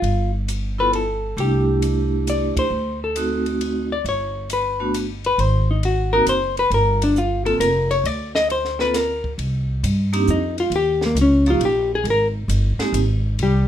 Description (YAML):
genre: jazz, small-group swing and bop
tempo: 135 BPM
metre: 3/4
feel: swing 67% on 8ths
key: G minor, C minor from 9.4 s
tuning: A4 = 442 Hz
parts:
  - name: hollow-body jazz guitar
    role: melody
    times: 0.0-13.7 s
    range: G3 to Eb5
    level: -19 LUFS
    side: left 2 dB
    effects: none
  - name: upright bass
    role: bass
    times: 0.0-13.7 s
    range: F1 to G2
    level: -22 LUFS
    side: equal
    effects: none
  - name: compact cocktail drum kit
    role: drums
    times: 0.0-13.5 s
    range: hi-hat, kick drum, ride cymbal, snare drum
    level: -32 LUFS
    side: left 1 dB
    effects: none
  - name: vibraphone with medium hard mallets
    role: accompaniment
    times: 0.8-12.9 s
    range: F3 to A4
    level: -23 LUFS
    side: right 3 dB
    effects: none
room: light reverb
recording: minimal, uncompressed stereo recording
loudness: -18 LUFS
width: side -10 dB against mid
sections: 0.0-9.4 A section; 9.4-13.7 B section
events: band accent 2.5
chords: 0.0 G7sus2; 1.4 C6; 2.7 D7b9; 4.0 G; 5.4 Ab7; 6.7 Gm7; 9.4 Cm; 10.7 Eb7; 12.1 Abmaj7(no3)